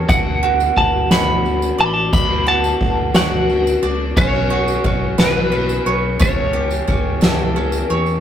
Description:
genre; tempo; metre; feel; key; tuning
indie folk with a building arrangement; 59 BPM (dotted quarters); 6/8; straight; D major; A4 = 440 Hz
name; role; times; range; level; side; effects
picked twelve-string acoustic guitar; accompaniment; 0.0-8.2 s; B2 to G4; -24 LUFS; left 3 dB; none
bowl-back mandolin; arpeggios; 0.0-8.2 s; C#4 to D5; -22 LUFS; right 7 dB; none
fingered electric bass; bass; 0.0-8.2 s; A1 to E2; -23 LUFS; equal; none
twelve-string electric guitar; melody; 0.1-7.5 s; B4 to B5; -20 LUFS; left 1 dB; tremolo
glockenspiel with rubber mallets; second line; 0.1-7.5 s; F#6 to G7; -32 LUFS; left 3 dB; none
soft-mallet drum kit; drums; 0.1-8.1 s; kick drum, ride cymbal, snare drum; -18 LUFS; left 1 dB; none
tambourine; percussion; 0.1-8.1 s; none; -36 LUFS; right 5 dB; none
room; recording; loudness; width
moderate small room reverb, RT60 0.6 s; rough rehearsal-room recording, tube saturation; -14 LUFS; side -9 dB against mid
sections
0.0-8.2 A section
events
none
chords
0.1 Dmaj7; 4.2 Bsus2; 6.2 A7/C#

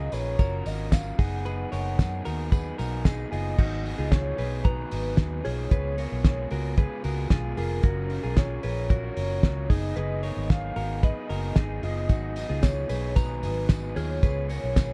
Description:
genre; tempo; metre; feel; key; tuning
jangly indie pop; 113 BPM; 4/4; straight; unclear; A4 = 440 Hz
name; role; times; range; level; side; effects
warbly nostalgic lead; melody; 0.0-14.9 s; A#4 to F#5; -37 LUFS; equal; chorus, tremolo
raw garage guitar; accompaniment; 0.0-14.9 s; G#2 to A#4; -39 LUFS; equal; overdrive
direct-recorded clean electric guitar; arpeggios; 0.0-14.9 s; C#4 to A#5; -39 LUFS; equal; none
vintage muted fingered electric bass; bass; 0.0-14.9 s; E#1 to F#2; -33 LUFS; equal; none
cloth-damped thuddy drum kit; drums; 0.1-14.9 s; crash cymbal, hi-hat, kick drum, snare drum; -24 LUFS; equal; none
tambourine; percussion; 0.1-3.2, 12.1-14.9 s; none; -52 LUFS; equal; none
room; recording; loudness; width
little or no reverb; dark, warm production; -27 LUFS; mono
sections
0.0-3.6 A section; 3.6-14.9 B section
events
none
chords
0.0 F#maj7; 1.2 B6/F#; 3.6 G#m7; 5.7 C#7; 7.8 F#maj7; 9.7 B6/F#; 12.1 G#m7; 14.2 C#7

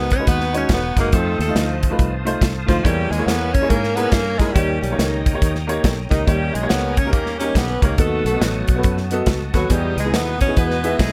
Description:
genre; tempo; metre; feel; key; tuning
uptempo gospel; 140 BPM; 4/4; swing 63% on 8ths; unclear; A4 = 440 Hz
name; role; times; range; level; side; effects
breathy tenor saxophone; melody; 0.0-11.1 s; D#3 to C#4; -27 LUFS; equal; none
bright saxophone section; melody; 0.0-11.1 s; G3 to C#5; -29 LUFS; equal; none
bright upright piano; accompaniment; 0.0-11.1 s; D#3 to E5; -26 LUFS; equal; none
bright tonewheel organ; sustained chords; 0.0-11.1 s; F#4 to E6; -36 LUFS; equal; slow rotary speaker, chorus vibrato
fingered electric bass; bass; 0.0-11.1 s; E1 to G#2; -26 LUFS; equal; none
modern studio drum kit; drums; 0.1-11.1 s; hi-hat, kick drum, snare drum; -22 LUFS; equal; none
muted studio string section; sustained chords; 6.3-11.1 s; B2 to F#4; -37 LUFS; equal; none
room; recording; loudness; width
little or no reverb; none; -19 LUFS; mono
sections
0.0-11.1 A section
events
none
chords
0.0 G#m7; 1.1 F7; 2.8 A#m7b5; 4.6 D#7; 8.0 B7; 9.7 Emaj7

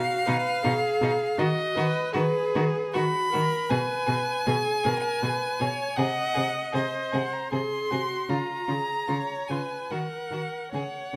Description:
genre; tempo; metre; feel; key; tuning
classical, slow romantic movement for string quartet; 71-81 BPM; 3/4; rubato; unclear; A4 = 445 Hz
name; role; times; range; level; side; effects
rich violin; melody; 0.0-11.2 s; B4 to B#5; -31 LUFS; equal; none
clear viola; accompaniment; 0.0-11.2 s; E#4 to D#5; -32 LUFS; equal; none
rich violin; second line; 0.3-10.8 s; D#4 to G#4; -37 LUFS; equal; none
rich cello; bass; 0.3-11.2 s; B2 to D#3; -32 LUFS; equal; none
room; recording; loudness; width
moderate recital hall reverb, RT60 1.3 s; close, detailed microphones; -27 LUFS; mono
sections
0.0-11.2 A section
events
none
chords
0.0 B5; 1.4 B/D#; 3.7 G#m/B; 6.0 G#7/B#; 8.3 C#; 9.9 D#m

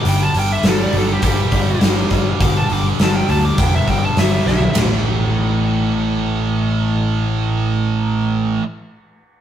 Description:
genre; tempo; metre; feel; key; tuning
hard rock; 102 BPM; 4/4; straight; unclear; A4 = 439 Hz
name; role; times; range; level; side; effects
high-gain lead guitar; melody; 0.0-4.8 s; G4 to D6; -22 LUFS; equal; distortion
overdriven semi-hollow guitar; riff; 0.0-8.6 s; G2 to D4; -24 LUFS; left 4 dB; none
scooped high-gain guitar; riff; 0.0-8.6 s; G2 to D4; -22 LUFS; right 6 dB; distortion
picked electric bass; bass; 0.1-8.6 s; F1 to D2; -19 LUFS; equal; none
big rock drum kit; drums; 0.1-4.9 s; hi-hat, kick drum, ride cymbal, snare drum, toms; -18 LUFS; equal; none
room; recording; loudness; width
light reverb; rough rehearsal-room recording; -14 LUFS; side -10 dB against mid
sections
0.0-4.8 A section; 4.8-7.1 B section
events
lead electric guitar solo 0.0-4.8; drum fill 4.5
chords
0.0 G5; 4.8 A5

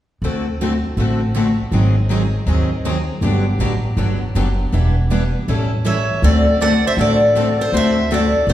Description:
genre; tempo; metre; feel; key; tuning
acoustic string swing (jazz manouche); 160 BPM; 4/4; swing 62% on 8ths; D mixolydian; A4 = 440 Hz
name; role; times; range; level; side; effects
picked steel-string acoustic guitar; accompaniment; 0.2-8.5 s; D3 to A4; -21 LUFS; left 4 dB; none
picked steel-string acoustic guitar; accompaniment; 0.2-8.5 s; D3 to B4; -24 LUFS; right 4 dB; none
upright bass; bass; 0.2-8.5 s; E1 to D#2; -18 LUFS; equal; none
picked steel-string acoustic guitar; melody; 5.9-8.5 s; C5 to F#5; -18 LUFS; left 1 dB; none
breathy clarinet; second line; 5.9-8.5 s; A4 to D5; -22 LUFS; right 4 dB; none
room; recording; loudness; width
wet recital hall reverb, RT60 1.8 s; recorded in a church or concert hall; -15 LUFS; side -12 dB against mid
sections
0.2-6.2 A section; 6.2-8.5 B section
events
none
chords
0.2 D7; 1.7 G#7; 3.2 Gmaj7; 4.7 Em7; 5.5 A7; 6.2 D7

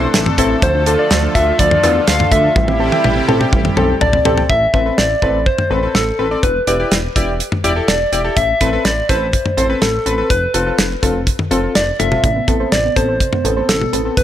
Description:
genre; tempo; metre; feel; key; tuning
synth-pop; 124 BPM; 4/4; straight; A minor; A4 = 445 Hz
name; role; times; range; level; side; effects
soft struck synth lead; melody; 0.0-14.2 s; A4 to F5; -18 LUFS; left 1 dB; chorus, analog delay
warm analog keys; accompaniment; 0.0-14.2 s; B3 to A5; -20 LUFS; left 2 dB; chorus
brassy analog pad; sustained chords; 0.0-4.5 s; C3 to A4; -21 LUFS; equal; chorus
chorused synth bass; bass; 0.0-14.2 s; E1 to E2; -20 LUFS; equal; none
damped 70s drum kit; drums; 0.1-14.2 s; cowbell, hi-hat, kick drum, snare drum, toms; -17 LUFS; equal; none
soft round pluck; arpeggios; 0.3-4.5, 12.2-14.2 s; C3 to G5; -23 LUFS; right 10 dB; chorus, analog delay
room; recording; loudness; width
light reverb; none; -12 LUFS; side -11 dB against mid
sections
0.0-4.5 A section; 4.5-14.2 B section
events
drum fill 2.6-4.5; synth keys fill 3.8-4.5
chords
0.0 Am; 0.6 Dm; 2.6 Am7; 4.5 Amadd9; 6.4 Em7; 8.4 Amadd9; 10.3 F; 12.2 Amadd9

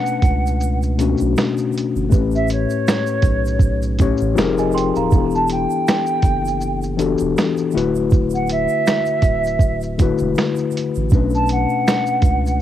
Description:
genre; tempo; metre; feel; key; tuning
lo-fi hip hop; 80 BPM; 4/4; swing 56% on 16ths; E dorian; A4 = 441 Hz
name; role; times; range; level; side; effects
mellow hollow silver concert flute; melody; 0.0-12.6 s; C#5 to A5; -21 LUFS; right 2 dB; low-pass filter, cassette tape, tape echo
mellow tine electric piano; accompaniment; 0.0-12.6 s; A2 to C#5; -20 LUFS; left 5 dB; medium stereo tremolo, cassette tape, low-pass filter
lo-fi sampler-style drum kit; drums; 0.1-12.6 s; finger snaps, hi-hat, kick drum, shaker, snare drum; -17 LUFS; right 2 dB; cassette tape
egg shaker; percussion; 0.1-12.6 s; none; -43 LUFS; right 12 dB; none
soft dub sub bass; bass; 0.2-12.6 s; D1 to C#2; -22 LUFS; right 1 dB; tube saturation
celesta; second line; 4.6-5.3 s; Eb5 to C6; -26 LUFS; right 9 dB; low-pass filter, cassette tape, tape echo
room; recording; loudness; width
light reverb, small room ambience; home recording on cassette; -16 LUFS; side -11 dB against mid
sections
0.0-12.6 A section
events
none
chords
0.0 Bm7; 2.1 A9; 4.4 Fm11; 5.1 Em11; 7.7 D69; 11.1 Bm7

